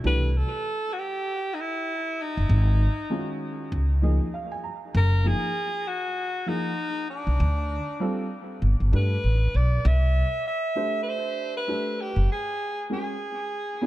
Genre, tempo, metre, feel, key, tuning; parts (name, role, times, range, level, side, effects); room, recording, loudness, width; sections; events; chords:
hip hop, jazz-hop; 98 BPM; 4/4; swing 59% on 16ths; A4 = 435 Hz
dark upright piano; accompaniment; 0.0-13.9 s; D#3 to Bb5; -31 LUFS; equal; dub echo
upright bass; bass; 0.0-12.3 s; F#1 to G2; -21 LUFS; equal
breathy alto saxophone; melody; 0.1-13.9 s; D4 to E5; -29 LUFS; equal; dub echo
light reverb, studio reverb; echo-heavy mix; -23 LUFS; side -15 dB against mid
0.0-13.9 A section
upright piano fill 3.7-4.9; break 12.3-13.9
0.0 C69; 2.5 G#5; 3.7 C#add9; 4.9 F#maj9; 7.4 Dm7; 8.6 Gadd9; 9.8 Cmaj13; 12.3 G#9sus4